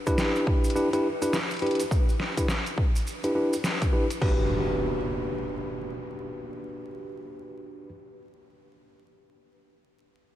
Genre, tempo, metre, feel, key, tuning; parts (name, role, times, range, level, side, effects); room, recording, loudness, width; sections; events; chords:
glitch hop; 104 BPM; 4/4; swing 61% on 16ths; A4 = 440 Hz
bell-like tine electric piano; stabs; 0.1-7.9 s; D4 to B4; -28 LUFS; equal; sidechain pumping, low-pass filter, ping-pong delay
dubstep drum kit; drums; 0.1-4.4 s; crash cymbal, hi-hat, snare drum; -33 LUFS; equal
electronic kick drum; drums; 0.1-4.4 s; -25 LUFS; equal
maracas; percussion; 0.1-4.2 s; -42 LUFS; right 3 dB
impact; sound effects; 4.2-7.9 s; -33 LUFS; equal
moderate huge ambient reverb, RT60 6.9 s; dreamy mix soaked in reverb, vinyl crackle; -24 LUFS; side -12 dB against mid
0.0-4.2 A section; 4.2-6.5 B section
0.0 G6/D; 4.2 Gmaj7/D